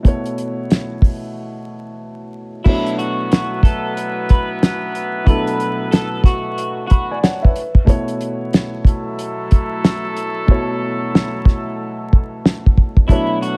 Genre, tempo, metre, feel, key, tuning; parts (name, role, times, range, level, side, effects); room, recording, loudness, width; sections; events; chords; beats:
hip hop, boom-bap hip-hop; 92 BPM; 4/4; swing 62% on 16ths; B minor; A4 = 439 Hz
dark concert grand piano; accompaniment; 0.0-13.6 s; B2 to B5; -26 LUFS; equal; cassette tape, high-pass filter, low-pass filter
cloth-damped thuddy drum kit; drums; 0.0-13.6 s; crash cymbal, hi-hat, kick drum, snare drum; -15 LUFS; equal
electric guitar at the edge of break-up; melody; 2.6-7.2, 13.1-13.6 s; E4 to B4; -26 LUFS; equal; analog chorus, high-pass filter, low-pass filter, digital delay
warm horn section; stabs; 2.6-13.6 s; F#3 to B4; -28 LUFS; equal; high-pass filter, low-pass filter, digital delay
studio reverb; vinyl crackle; -17 LUFS; mono
0.0-2.7 A section; 2.7-13.6 B section
break 1.4-2.7; hi-hats muted 10.5-13.1
0.0 B9sus4; 2.7 Bm11; 7.6 B9sus4
| 0.05 0.70 1.36 2.01 | 2.66 3.31 3.96 4.62 | 5.27 5.92 6.57 7.22 | 7.88 8.53 9.18 9.83 | 10.49 11.14 11.79 12.44 | 13.10